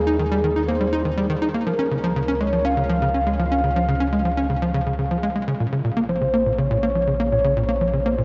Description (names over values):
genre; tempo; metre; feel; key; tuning
ambient, sequencer-driven space music; 122 BPM; 4/4; straight; Bb minor; A4 = 441 Hz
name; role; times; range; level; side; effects
soft octave-layered synth lead; melody; 0.0-8.2 s; Ab4 to F5; -26 LUFS; equal; chorus, delay
warm sub bass; bass; 0.0-8.2 s; Bb1 to Eb2; -30 LUFS; equal; none
tight sequencer bass; riff; 0.1-8.2 s; Bb2 to Eb4; -24 LUFS; equal; lush chorus, delay
room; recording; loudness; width
wet huge ambient reverb, RT60 8.2 s; worn, warbling old tape, cassette tape, warbly pitch drift, nothing above 7.8 kHz; -21 LUFS; mono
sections
0.0-5.6 A section; 5.6-8.2 B section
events
none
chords
0.0 Ebsus4; 1.7 Db; 5.6 Bbm